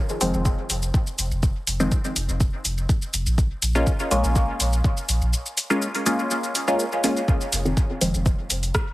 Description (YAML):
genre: dub techno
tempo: 123 BPM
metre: 4/4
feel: straight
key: F minor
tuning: A4 = 440 Hz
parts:
  - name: deep house drum kit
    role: drums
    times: 0.1-8.8 s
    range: hi-hat, rim click, shaker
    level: -27 LUFS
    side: equal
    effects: none
  - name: filtered dub chord stab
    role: stabs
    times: 0.2-8.9 s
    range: Eb3 to F4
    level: -24 LUFS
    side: equal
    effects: chorus, phaser, sidechain pumping, dub echo
  - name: warm sub bass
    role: bass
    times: 0.2-8.7 s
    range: F1 to Bb1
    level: -24 LUFS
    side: equal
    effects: tube saturation, sidechain pumping
  - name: electronic kick drum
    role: drums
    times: 0.5-8.8 s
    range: none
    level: -22 LUFS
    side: equal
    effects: none
room: light reverb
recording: heavily compressed radio sound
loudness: -20 LUFS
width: side -18 dB against mid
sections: 0.0-7.3 A section; 7.3-8.9 A section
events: filter sweep on synth stab 7.3-8.9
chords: 0.0 Fm7; 3.4 Bbm7; 7.3 Fm7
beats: 0.45 0.94 | 1.43 1.92 2.40 2.89 | 3.38 3.87 4.36 4.84 | 5.33 5.82 6.31 6.79 | 7.28 7.77 8.26 8.75